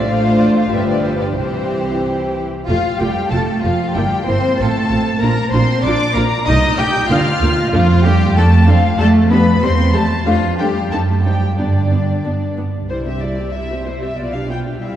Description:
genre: quick classical-period movement for string orchestra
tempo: 94 BPM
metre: 2/4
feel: straight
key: F major, C major from 7.7 s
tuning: A4 = 440 Hz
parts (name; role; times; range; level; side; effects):
- dark studio violin section; melody; 0.0-15.0 s; C5 to G6; -22 LUFS; left 3 dB; none
- warm chamber violin section; second line; 0.0-15.0 s; D4 to G5; -22 LUFS; left 2 dB; none
- warm chamber viola section; accompaniment; 0.0-14.9 s; E3 to G4; -22 LUFS; equal; none
- dark chamber cello section; bass; 0.0-15.0 s; G2 to G4; -20 LUFS; right 1 dB; none
- dark chamber double bass section; bass; 0.0-15.0 s; F1 to G2; -17 LUFS; right 2 dB; none
room: wet church reverb, RT60 3.4 s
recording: dark, warm production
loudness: -13 LUFS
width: side -11 dB against mid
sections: 0.0-2.7 A section; 2.7-12.9 B section; 12.9-15.0 A section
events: none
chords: 0.1 Dm7/A; 0.7 G7; 1.4 C; 2.7 F; 4.0 Edim/G; 4.6 F/A; 5.2 Bb; 6.5 Adim/C; 7.1 Bb/D; 7.7 Dm/F; 9.0 G7/F; 9.6 C/E; 10.3 Dm/F; 10.9 F#dim7; 11.6 G; 12.9 C; 14.2 G7/B

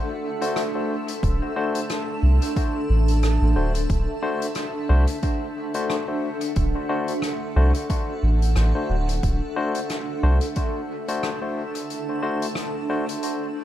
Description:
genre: ambient dub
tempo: 90 BPM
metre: 4/4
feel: swing 56% on 16ths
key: D mixolydian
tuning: A4 = 440 Hz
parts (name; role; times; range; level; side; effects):
- granular cloud pad; sustained chords; 0.0-13.6 s; D4 to A5; -28 LUFS; right 2 dB; built-in reverb
- barky tine electric piano; stabs; 0.4-13.0 s; A3 to C5; -28 LUFS; left 4 dB; dub echo
- soft-mallet drum kit; drums; 0.4-13.4 s; hi-hat, rim click; -35 LUFS; left 2 dB; dub echo
- soft dub sub bass; bass; 1.2-10.4 s; D1 to C2; -19 LUFS; equal; none
- electronic kick drum; drums; 1.2-10.7 s; none; -24 LUFS; equal; overdrive
room: studio reverb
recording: none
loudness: -21 LUFS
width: side -12 dB against mid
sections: 0.0-13.6 A section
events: break 11.9-13.6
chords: 0.0 D7

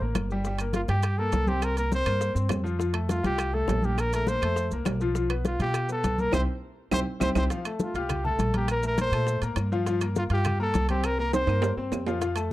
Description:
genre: latin, salsa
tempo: 204 BPM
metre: 4/4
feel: straight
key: unclear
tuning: A4 = 440 Hz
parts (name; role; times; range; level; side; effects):
- bright baby grand piano; accompaniment; 0.0-12.5 s; F3 to F6; -32 LUFS; left 3 dB; plate reverb
- upright bass; bass; 0.0-12.5 s; G1 to B2; -28 LUFS; equal; none
- bongos; percussion; 0.0-12.5 s; none; -36 LUFS; left 7 dB; none
- congas; percussion; 0.0-12.5 s; none; -32 LUFS; equal; none
- claves; percussion; 0.2-12.5 s; none; -40 LUFS; right 3 dB; none
- maracas; percussion; 0.2-12.5 s; none; -45 LUFS; right 4 dB; none
- timbales; percussion; 0.2-12.5 s; none; -34 LUFS; right 7 dB; none
- clear trumpet; melody; 0.8-11.7 s; F4 to C5; -29 LUFS; equal; plate reverb
room: moderate small room reverb, RT60 0.6 s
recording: dark, warm production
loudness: -24 LUFS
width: side -15 dB against mid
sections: 0.0-7.5 A section; 7.5-12.5 A section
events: band accent 6.3-7.5; drum fill 6.9-7.5, 11.3-12.2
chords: 0.4 Gm; 1.6 C7sus4; 2.8 F; 4.0 Bbsus2; 5.2 G7/B; 6.3 C; 7.5 Fadd9; 8.7 Bbsus2; 9.9 C7sus4

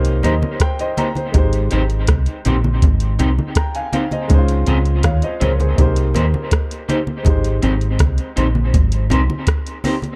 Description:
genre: lovers rock reggae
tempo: 81 BPM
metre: 4/4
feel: straight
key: Ab major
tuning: A4 = 441 Hz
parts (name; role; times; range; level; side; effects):
- clear grand piano; accompaniment; 0.0-10.2 s; Ab3 to Bb5; -27 LUFS; equal; none
- deep dub fingered electric bass; bass; 0.0-9.3 s; Ab1 to Eb2; -19 LUFS; equal; none
- soft vintage rhythm box; drums; 0.0-10.2 s; hi-hat, kick drum, rim click; -19 LUFS; equal; none
- electric guitar through a small old amp; stabs; 0.2-9.9 s; Bb3 to C5; -26 LUFS; equal; subtle chorus, tape echo
- congas; percussion; 0.2-10.2 s; none; -27 LUFS; equal; none
room: little or no reverb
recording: dark, warm production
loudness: -17 LUFS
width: mono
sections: 0.0-10.2 A section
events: grand piano fill 0.0-1.3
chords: 0.0 Cm7; 1.3 Abmaj7; 4.3 Dbmaj7; 5.8 Cm7; 7.3 Abmaj7

